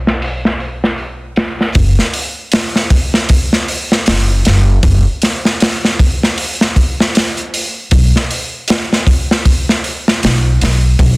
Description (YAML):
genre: trip hop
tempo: 78 BPM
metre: 4/4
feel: swing 57% on 16ths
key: unclear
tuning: A4 = 441 Hz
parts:
  - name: upright bass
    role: bass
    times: 0.0-11.2 s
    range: F#1 to B1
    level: -12 LUFS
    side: equal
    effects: none
  - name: crunchy breakbeat drum kit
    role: drums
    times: 0.1-11.2 s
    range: hi-hat, kick drum, snare drum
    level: -12 LUFS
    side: equal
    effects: low-pass filter on kick, low-pass filter on hats, low-pass filter on snare, low-pass filter on room
room: little or no reverb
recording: dense, heavily limited modern master, low-pass filter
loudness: -11 LUFS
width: side -27 dB against mid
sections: 0.0-1.8 A section; 1.8-11.2 B section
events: none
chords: none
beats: 0.22 0.99 | 1.76 2.53 3.30 4.07 | 4.83 5.61 6.37 7.14 | 7.91 8.68 9.45 10.22 | 10.99